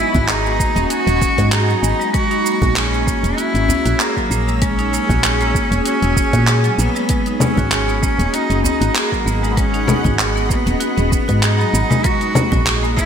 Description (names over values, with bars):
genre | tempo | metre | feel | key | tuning
organic downtempo | 97 BPM | 4/4 | swing 55% on 16ths | G# minor | A4 = 440 Hz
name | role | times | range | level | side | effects
clear cello | melody | 0.0-13.1 s | A#3 to F#4 | -21 LUFS | right 1 dB | digital delay
granular cloud pad | sustained chords | 0.0-13.1 s | F#4 to E6 | -24 LUFS | right 1 dB | built-in reverb, analog chorus, sidechain pumping
marimba with hard mallets | arpeggios | 0.0-13.1 s | F#3 to G#4 | -22 LUFS | left 1 dB | digital delay
woody FM bass | bass | 0.0-13.0 s | D#1 to A#2 | -19 LUFS | equal | none
electronic kick drum | drums | 0.1-13.1 s | none | -20 LUFS | equal | overdrive
djembe | percussion | 0.1-12.6 s | none | -28 LUFS | left 1 dB | none
deep house drum kit | drums | 0.2-13.1 s | congas, handclaps, hi-hat, shaker | -21 LUFS | equal | overdrive, gated reverb
room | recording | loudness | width
moderate lush hall reverb, RT60 2.3 s | bright 1980s-style digital production | -14 LUFS | side -8 dB against mid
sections
0.0-13.1 A section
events
none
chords
0.0 G#m7; 2.1 A#m7b5; 7.1 G#m7; 12.0 A#m7b5